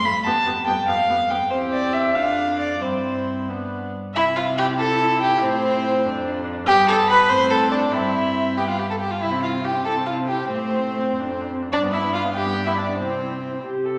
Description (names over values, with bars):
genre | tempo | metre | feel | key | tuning
quick classical-period movement for string quartet | 95 BPM (dotted quarters) | 6/8 | rubato | C major | A4 = 440 Hz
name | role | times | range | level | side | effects
dark violin | melody | 0.0-13.6 s | C5 to C6 | -26 LUFS | equal | none
warm violin | second line | 0.0-13.6 s | C4 to C5 | -25 LUFS | equal | none
warm viola | accompaniment | 0.0-14.0 s | A3 to A4 | -29 LUFS | equal | none
dark cello | bass | 0.0-14.0 s | E2 to C3 | -32 LUFS | equal | none
room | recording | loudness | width
wet recital hall reverb, RT60 1.6 s | none | -21 LUFS | mono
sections
0.0-4.2 A section; 4.2-14.0 B section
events
none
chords
0.3 G7/F; 1.5 C/E; 2.2 Dm/F; 2.8 C/G; 3.5 G; 4.2 C; 5.4 Am; 6.0 Dm7/F; 6.7 G; 7.3 Amadd11; 7.9 C/G; 8.6 G; 9.2 C; 10.5 Am; 11.1 Dm7/F; 11.7 G; 13.0 C